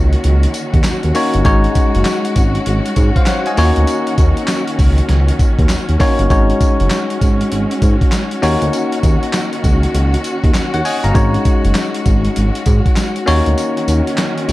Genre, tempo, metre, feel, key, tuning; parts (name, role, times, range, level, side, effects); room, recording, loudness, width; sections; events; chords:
R&B, new jack swing; 99 BPM; 4/4; swing 63% on 16ths; Eb minor; A4 = 441 Hz
bell-like tine electric piano; accompaniment; 0.0-14.5 s; Ab3 to Bb5; -18 LUFS; left 2 dB
warm studio string section; sustained chords; 0.0-14.5 s; Eb3 to Gb4; -23 LUFS; right 1 dB
smooth synth bass; bass; 0.0-14.5 s; Gb1 to Ab2; -14 LUFS; equal
dusty soul sampler-style drum kit; drums; 0.1-14.5 s; handclaps, hi-hat, kick drum, snare drum, tambourine; -16 LUFS; equal
little or no reverb; dark, warm production; -12 LUFS; side -17 dB against mid
0.0-14.5 A section
break 13.6-14.5
0.0 Ebm7; 1.5 Ab7sus4; 3.6 Ebm7; 6.3 Ab7sus4; 8.4 Ebm7; 11.2 Ab7sus4; 13.3 Ebm7